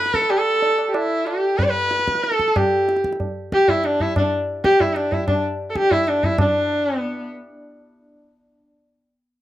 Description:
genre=indian classical, Hindustani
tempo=188 BPM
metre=3/4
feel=straight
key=D raga durga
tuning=A4 = 440 Hz
part: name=rich sarangi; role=melody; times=0.0-7.3 s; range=D4 to D5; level=-18 LUFS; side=equal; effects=none
part: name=tabla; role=percussion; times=0.1-6.5 s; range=none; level=-25 LUFS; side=right 1 dB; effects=none
room=light reverb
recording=dry, close 1970s-style studio recording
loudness=-17 LUFS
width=side -14 dB against mid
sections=0.0-6.4 A section; 6.4-8.3 B section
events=speeding up 0.0-8.3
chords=none

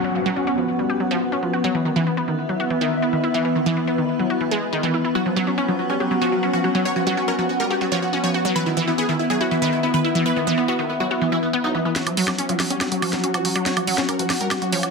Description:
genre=psychedelic trance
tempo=141 BPM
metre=4/4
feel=straight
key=unclear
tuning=A4 = 440 Hz
part: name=evolving wavetable pad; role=sustained chords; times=0.0-14.9 s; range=F#3 to B4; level=-27 LUFS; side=equal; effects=chorus, built-in reverb, phaser
part: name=wide unison pluck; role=riff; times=0.0-14.8 s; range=D#3 to G4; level=-23 LUFS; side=equal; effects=auto-pan, tape echo
part: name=downlifter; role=sound effects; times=0.0-1.7 s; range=none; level=-38 LUFS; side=equal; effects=none
part: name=airy breathy pad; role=texture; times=0.0-14.9 s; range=B3 to F#5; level=-25 LUFS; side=left 1 dB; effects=chorus
part: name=supersaw stab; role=melody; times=5.2-14.9 s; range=F#3 to C#5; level=-25 LUFS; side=equal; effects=phaser, digital delay
part: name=drum and bass drum kit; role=drums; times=12.0-14.9 s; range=hi-hat, snare drum, woodblock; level=-23 LUFS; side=right 1 dB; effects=low-pass filter on hats, low-pass filter on perc, low-pass filter on snare
room=wet digital room reverb, RT60 1.1 s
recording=dense, heavily limited modern master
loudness=-19 LUFS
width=side -4 dB against mid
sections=0.0-12.0 A section; 12.0-14.9 B section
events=build-up 12.0-14.9; drum fill 12.0-14.9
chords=0.0 F#5; 1.7 E5; 5.2 F#5; 8.6 E5; 12.0 F#5

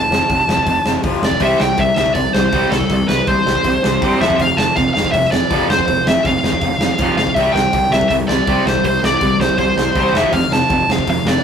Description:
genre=punk rock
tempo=161 BPM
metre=4/4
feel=straight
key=C major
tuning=A4 = 438 Hz
part: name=smooth overdriven lead guitar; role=melody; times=0.0-11.4 s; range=A4 to A5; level=-16 LUFS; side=equal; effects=none
part: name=raw garage guitar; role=riff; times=0.0-11.4 s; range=F2 to C4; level=-21 LUFS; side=left 2 dB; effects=overdrive
part: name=fuzz picked electric bass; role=bass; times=0.0-11.4 s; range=F1 to G2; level=-23 LUFS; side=equal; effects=overdrive
part: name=big rock drum kit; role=drums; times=0.1-11.4 s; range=hi-hat, kick drum, snare drum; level=-20 LUFS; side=equal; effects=none
part: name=cranked stack guitar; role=riff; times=1.4-11.4 s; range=F2 to C4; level=-22 LUFS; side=right 4 dB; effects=overdrive
room=moderate stone room reverb, RT60 1.1 s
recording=rough rehearsal-room recording, warm saturation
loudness=-13 LUFS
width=side -7 dB against mid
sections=0.0-11.4 A section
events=none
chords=0.0 F; 1.4 C5; 4.2 F5; 7.4 C5; 10.1 F

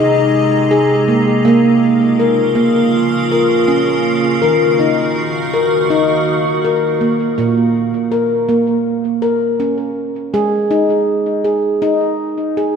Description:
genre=world meditative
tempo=81 BPM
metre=4/4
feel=straight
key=Bb minor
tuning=A4 = 439 Hz
part: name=icy glass pad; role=sustained chords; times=0.0-7.3 s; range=C3 to Gb4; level=-17 LUFS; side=right 1 dB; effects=chorus, built-in reverb
part: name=handpan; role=arpeggios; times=0.0-12.8 s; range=Bb2 to Bb4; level=-13 LUFS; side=equal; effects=tape echo
room=wet lush hall reverb, RT60 3.0 s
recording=none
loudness=-12 LUFS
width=side -6 dB against mid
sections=0.0-12.8 A section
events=none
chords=0.0 Ab; 1.5 Bbm; 4.4 Ebm; 7.4 Bbm; 10.3 Ab5

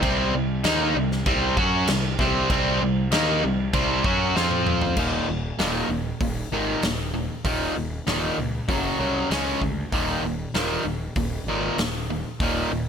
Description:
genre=hard rock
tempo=97 BPM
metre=4/4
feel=straight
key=Eb dorian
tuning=A4 = 439 Hz
part: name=crunchy overdriven guitar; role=riff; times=0.0-12.9 s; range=Eb2 to Gb4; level=-23 LUFS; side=equal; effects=none
part: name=fuzz picked electric bass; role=bass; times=0.0-12.9 s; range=Eb1 to Gb2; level=-29 LUFS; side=equal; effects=overdrive
part: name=huge arena drum kit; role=drums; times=0.0-12.5 s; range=crash cymbal, hi-hat, kick drum, snare drum, toms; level=-28 LUFS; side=equal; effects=none
room=studio reverb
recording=none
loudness=-21 LUFS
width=side -7 dB against mid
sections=0.0-5.0 A section; 5.0-12.9 B section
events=drum fill 4.4-5.0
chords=0.0 C5; 4.4 F5; 5.0 Eb5; 8.7 Gb5; 9.3 Db5; 9.9 Eb5

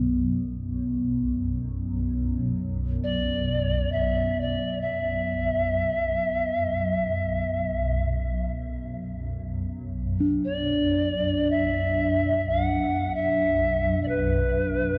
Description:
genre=world meditative, free-time meditation music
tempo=free time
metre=none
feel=none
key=B minor pentatonic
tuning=A4 = 438 Hz
part: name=shimmering ambient pad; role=drone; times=0.0-15.0 s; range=B1 to F#2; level=-30 LUFS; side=equal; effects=chorus, built-in reverb, phaser
part: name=bronze singing bowl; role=texture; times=0.0-15.0 s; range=B3 to D4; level=-32 LUFS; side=equal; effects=none
part: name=bright reedy polished pan flute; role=melody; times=3.0-15.0 s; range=B4 to F#5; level=-28 LUFS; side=equal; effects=diffuse ambient delay
room=moderate huge ambient reverb, RT60 4.8 s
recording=dark, warm production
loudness=-26 LUFS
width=mono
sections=0.0-15.0 A section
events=none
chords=none

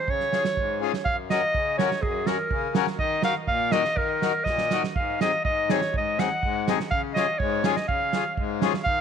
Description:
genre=alpine folk, alpine dance band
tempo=123 BPM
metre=2/4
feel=straight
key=F# major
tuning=A4 = 441 Hz
part: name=bright clarinet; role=melody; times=0.0-9.0 s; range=G#4 to F#5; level=-25 LUFS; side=right 1 dB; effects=tape echo
part: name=accordion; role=accompaniment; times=0.1-9.0 s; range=F#2 to A#4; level=-28 LUFS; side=left 12 dB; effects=none
part: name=unplugged drum kit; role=drums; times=0.1-9.0 s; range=hi-hat, kick drum, snare drum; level=-28 LUFS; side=right 5 dB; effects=none
room=moderate plate reverb, RT60 1.9 s, small room ambience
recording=1960s-style stereo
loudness=-22 LUFS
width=side -7 dB against mid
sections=0.0-1.1 A section; 1.1-9.0 B section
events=drum fill 0.8, 4.5-5.0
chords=0.1 Db; 1.1 F#; 3.0 D#m; 5.0 G#7; 6.9 C#

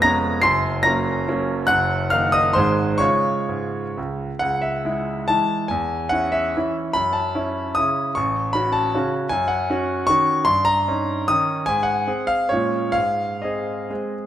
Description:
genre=classical, romantic triple-time dance for piano with dotted rhythms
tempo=119-165 BPM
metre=3/4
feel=rubato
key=Db major, C# minor from 4.4 s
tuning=A4 = 439 Hz
part: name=clear concert grand piano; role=solo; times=0.0-14.3 s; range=F1 to C7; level=-18 LUFS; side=equal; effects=none
room=moderate recital hall reverb, RT60 1.6 s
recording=none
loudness=-18 LUFS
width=side -11 dB against mid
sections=0.0-4.4 A section; 4.4-14.3 B section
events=none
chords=0.4 Gb; 1.7 Ebm/Gb; 2.6 Ab; 3.0 Db; 4.4 C#m; 5.7 C#m/E; 6.9 F#m7; 8.2 F#m/A; 9.3 Ebm7/Gb; 10.5 Eb7/G; 11.7 Ab; 12.5 Bbm7; 12.9 Ab

